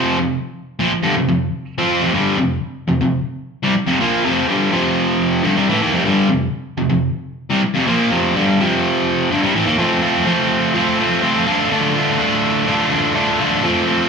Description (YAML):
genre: rock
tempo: 124 BPM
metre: 4/4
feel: straight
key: unclear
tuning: A4 = 438 Hz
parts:
  - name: distorted electric guitar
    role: solo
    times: 0.0-14.1 s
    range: F2 to F4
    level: -15 LUFS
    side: equal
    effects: distortion
room: moderate large studio reverb, RT60 1.1 s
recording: band playing live in one room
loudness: -15 LUFS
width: side -5 dB against mid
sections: 0.0-9.8 A section; 9.8-14.1 B section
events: none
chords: 0.0 F5; 9.8 F; 11.5 Dm